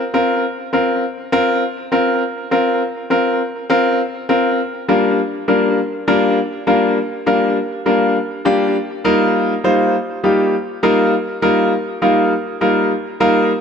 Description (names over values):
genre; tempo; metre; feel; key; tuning
pop; 101 BPM; 4/4; straight; Eb major; A4 = 441 Hz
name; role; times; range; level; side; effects
clear baby grand piano; solo; 0.1-13.5 s; G3 to C5; -14 LUFS; left 1 dB; tape echo
room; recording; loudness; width
moderate lush hall reverb, RT60 2.6 s; nothing above 10.6 kHz; -14 LUFS; side -6 dB against mid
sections
0.0-13.6 A section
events
none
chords
0.0 Bbsus2; 4.6 Gm7; 9.0 Ebadd9